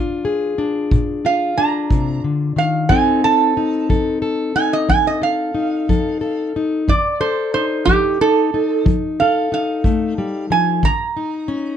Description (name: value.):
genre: acoustic country blues, solo or duo.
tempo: 60 BPM (dotted quarters).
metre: 12/8.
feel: straight.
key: unclear.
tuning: A4 = 441 Hz.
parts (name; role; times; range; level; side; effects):
fingerpicked plugged-in steel-string acoustic guitar; accompaniment; 0.0-11.8 s; Bb2 to A4; -19 LUFS; left 4 dB; none.
kick drum; drums; 0.9-11.0 s; none; -18 LUFS; equal; none.
metal-body resonator slide guitar; melody; 1.3-11.8 s; G4 to Bb5; -18 LUFS; right 6 dB; plate reverb.
room: light reverb.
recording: dark, warm production.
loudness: -15 LUFS.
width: side -9 dB against mid.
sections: 0.0-11.8 A section.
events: none.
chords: 0.0 Bb7; 2.9 F7; 10.8 Eb7(no3).